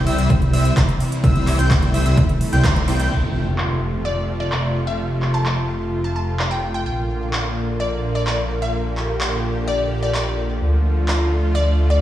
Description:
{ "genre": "EDM, festival progressive house", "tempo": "128 BPM", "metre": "4/4", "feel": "straight", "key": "F major", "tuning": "A4 = 435 Hz", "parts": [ { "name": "supersaw pad", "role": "sustained chords", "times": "0.0-12.0 s", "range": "C3 to G4", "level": "-24 LUFS", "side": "equal", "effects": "sidechain pumping" }, { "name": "detuned saw bass", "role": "bass", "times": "0.0-12.0 s", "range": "F1 to D2", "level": "-21 LUFS", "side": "equal", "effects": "sidechain pumping" }, { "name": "plucky unison lead", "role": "arpeggios", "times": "0.1-3.1 s", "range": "E6 to G6", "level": "-28 LUFS", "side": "left 1 dB", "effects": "sidechain pumping, digital delay" }, { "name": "supersaw chords", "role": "riff", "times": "0.1-3.1 s", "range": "G3 to G5", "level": "-25 LUFS", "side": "equal", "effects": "sidechain pumping, low-pass filter, digital delay" }, { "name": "big-room dance drum kit", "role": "drums", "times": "0.1-11.2 s", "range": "crash cymbal, handclaps, hi-hat", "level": "-27 LUFS", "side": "equal", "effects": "overdrive, low-pass filter on hats, low-pass filter on snare, low-pass filter on cymbals, low-pass filter on room" }, { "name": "electronic kick drum", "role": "drums", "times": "0.3-2.7 s", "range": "none", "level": "-18 LUFS", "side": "equal", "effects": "overdrive" }, { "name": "impact", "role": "sound effects", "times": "3.1-5.0 s", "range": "none", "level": "-27 LUFS", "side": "equal", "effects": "none" }, { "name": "glassy wavetable pluck", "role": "melody", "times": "4.0-12.0 s", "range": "D5 to A5", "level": "-26 LUFS", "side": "left 2 dB", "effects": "chorus, digital delay" } ], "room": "moderate recital hall reverb, RT60 1.5 s", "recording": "played on a big sound system in a bare room, large studio reverb, studio ambience", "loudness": "-17 LUFS", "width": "side -12 dB against mid", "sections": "0.0-3.1 A section; 3.1-12.0 B section", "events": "drop 0.0-3.1; band accent 2.6; impact 3.1-5.0", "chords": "0.0 C; 3.1 F; 6.9 Bb; 10.6 Dm" }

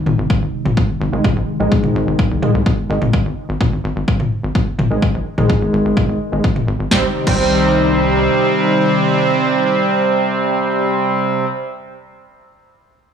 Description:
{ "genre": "melodic techno", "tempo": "127 BPM", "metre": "4/4", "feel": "straight", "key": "C minor", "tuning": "A4 = 440 Hz", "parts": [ { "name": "warm analog pad", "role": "sustained chords", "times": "0.0-11.3 s", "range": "C3 to Eb4", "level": "-21 LUFS", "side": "left 2 dB", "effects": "chorus, vintage 12-bit sampler grit, sidechain pumping" }, { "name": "tight sequencer bass", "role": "bass", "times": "0.0-8.3 s", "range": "Ab1 to C2", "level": "-21 LUFS", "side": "left 1 dB", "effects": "sidechain pumping" }, { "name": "punchy analog drum machine", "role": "drums", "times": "0.1-7.4 s", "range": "crash cymbal, snare drum, toms", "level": "-20 LUFS", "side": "left 1 dB", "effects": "none" }, { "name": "electronic kick drum", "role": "drums", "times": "0.3-7.4 s", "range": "none", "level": "-17 LUFS", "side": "left 1 dB", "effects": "none" }, { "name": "sync-sweep polysynth", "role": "stabs", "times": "1.1-11.5 s", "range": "Ab2 to C4", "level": "-16 LUFS", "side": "right 2 dB", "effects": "chorus, sidechain pumping, dub echo" } ], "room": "moderate scoring stage reverb, RT60 1.5 s", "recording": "small room ambience", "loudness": "-14 LUFS", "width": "side -7 dB against mid", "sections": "0.0-6.9 A section; 6.9-10.7 B section", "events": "filter sweep on analog synth pad 0.0-6.9", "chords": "0.0 Ab; 6.9 Cm" }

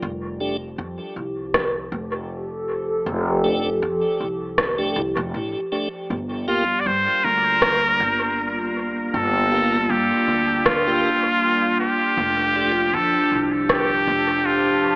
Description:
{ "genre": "ambient dub", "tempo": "79 BPM", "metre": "4/4", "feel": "swing 54% on 16ths", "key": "unclear", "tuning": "A4 = 440 Hz", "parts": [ { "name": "warbly tape-like pad", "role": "sustained chords", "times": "0.0-15.0 s", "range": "F3 to A5", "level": "-25 LUFS", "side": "equal", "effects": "chorus, built-in reverb" }, { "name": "upright bass", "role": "bass", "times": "0.0-15.0 s", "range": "F1 to G2", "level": "-28 LUFS", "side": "equal", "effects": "none" }, { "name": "tonewheel organ", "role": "stabs", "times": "0.4-12.7 s", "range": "A3 to G4", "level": "-29 LUFS", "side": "equal", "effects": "slow rotary speaker, dub echo" }, { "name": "electronic kick drum", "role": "drums", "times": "1.5-13.9 s", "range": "none", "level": "-31 LUFS", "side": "equal", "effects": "overdrive" }, { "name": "electronic rim click", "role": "drums", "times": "1.5-13.9 s", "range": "none", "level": "-24 LUFS", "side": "equal", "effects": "dub echo" }, { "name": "trumpet with straight mute", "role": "melody", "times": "6.5-15.0 s", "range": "F4 to D5", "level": "-19 LUFS", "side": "equal", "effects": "dub echo" } ], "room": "moderate spring reverb, RT60 2.6 s", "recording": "echo-heavy mix, AM radio sound", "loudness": "-18 LUFS", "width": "side -27 dB against mid", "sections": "0.0-15.0 A section", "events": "none", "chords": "0.0 F69; 6.1 Gm7; 12.2 F69" }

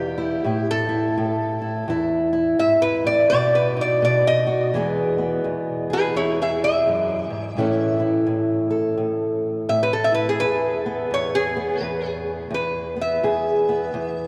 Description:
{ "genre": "acoustic country blues, solo or duo", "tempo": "85 BPM", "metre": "4/4", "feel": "swing 62% on 8ths", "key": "E major", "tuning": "A4 = 440 Hz", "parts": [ { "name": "lap resonator guitar", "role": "melody", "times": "0.0-14.3 s", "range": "E4 to E5", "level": "-24 LUFS", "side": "equal", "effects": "none" }, { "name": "fingerpicked old ladder-braced acoustic guitar", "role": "accompaniment", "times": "0.0-14.3 s", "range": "E2 to A4", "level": "-25 LUFS", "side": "equal", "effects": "none" } ], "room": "wet cathedral reverb, RT60 5.6 s", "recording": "recorded in a church or concert hall", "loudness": "-21 LUFS", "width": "mono", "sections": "0.0-4.7 A section; 4.7-14.3 A section", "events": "resonator guitar played with a steel bar solo 0.0-4.7, 4.7-14.3", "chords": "0.5 A5; 1.9 E; 3.3 B; 4.7 E; 7.6 A; 10.4 E" }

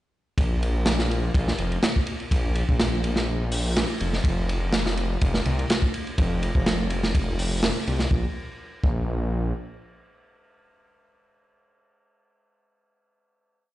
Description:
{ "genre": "breakbeat, breaks", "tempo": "124 BPM", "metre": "4/4", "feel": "swing 53% on 16ths", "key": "unclear", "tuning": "A4 = 440 Hz", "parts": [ { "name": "detuned saw bass", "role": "bass", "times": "0.4-9.5 s", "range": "F1 to C2", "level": "-25 LUFS", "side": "equal", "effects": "none" }, { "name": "crunchy breakbeat drum kit", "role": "drums", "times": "0.4-9.0 s", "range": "hi-hat, kick drum, ride cymbal, snare drum", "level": "-24 LUFS", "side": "equal", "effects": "none" } ], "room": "light reverb", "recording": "played on a big sound system in a bare room, stone room reverb, nothing above 10.3 kHz", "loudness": "-22 LUFS", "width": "side -15 dB against mid", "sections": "0.4-8.1 drop; 8.1-12.0 final note", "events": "drop 0.4-8.1", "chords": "none" }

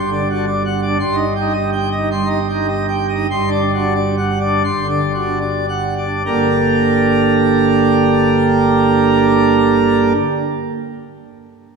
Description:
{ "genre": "classical, organ toccata", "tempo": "68-116 BPM", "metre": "4/4", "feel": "straight", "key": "G minor", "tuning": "A4 = 440 Hz", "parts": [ { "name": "pipe organ, plenum", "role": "solo", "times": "0.0-10.1 s", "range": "G1 to C6", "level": "-14 LUFS", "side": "right 2 dB", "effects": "none" } ], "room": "wet church reverb, RT60 2.8 s", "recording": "small room ambience", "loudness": "-13 LUFS", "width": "side -5 dB against mid", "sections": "0.0-6.3 A section; 6.3-11.8 B section", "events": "slowing down 0.0-6.3", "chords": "0.0 D7/G; 1.0 Cm/G; 3.3 D7/G; 6.3 Gm" }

